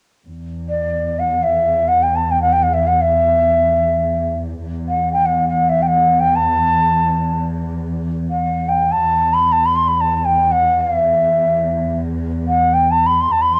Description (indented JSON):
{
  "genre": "persian",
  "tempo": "free time",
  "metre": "none",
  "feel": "none",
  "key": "E dastgah shur",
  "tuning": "A4 = 444 Hz",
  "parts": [
    { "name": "dark symphonic cello section", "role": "drone", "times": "0.3-13.6 s", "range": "E2", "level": "-24 LUFS", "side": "equal", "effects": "cassette tape" },
    { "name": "mellow ney", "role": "melody", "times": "0.7-13.6 s", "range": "D5 to C6", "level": "-17 LUFS", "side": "equal", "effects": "none" }
  ],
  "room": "moderate spring reverb, RT60 1.6 s",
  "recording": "home recording on cassette",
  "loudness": "-16 LUFS",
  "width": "mono",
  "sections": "0.3-13.6 A section",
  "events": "none",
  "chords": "none"
}